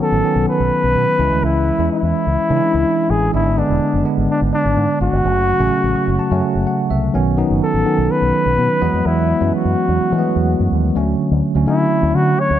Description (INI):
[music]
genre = 1980s-style pop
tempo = 126 BPM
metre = 4/4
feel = straight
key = unclear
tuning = A4 = 440 Hz
[part]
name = breathy flugelhorn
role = melody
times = 0.0-12.6 s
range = D4 to C#5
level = -19 LUFS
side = left 1 dB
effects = none
[part]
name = tine electric piano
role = accompaniment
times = 0.0-12.6 s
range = C#3 to C#6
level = -18 LUFS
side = right 1 dB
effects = medium stereo tremolo
[part]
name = fingered electric bass with an envelope filter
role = bass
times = 0.1-12.6 s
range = E1 to E3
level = -19 LUFS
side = equal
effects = none
[sound]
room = light reverb, small room reverb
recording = none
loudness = -14 LUFS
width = side -11 dB against mid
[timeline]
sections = 0.0-11.0 A section; 11.0-12.6 B section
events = tine electric piano fill 5.7-7.1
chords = 0.0 Badd9; 1.2 C#m; 3.3 G#dim; 5.2 F#m; 7.1 Badd9; 8.8 Eadd9; 11.0 Dmaj7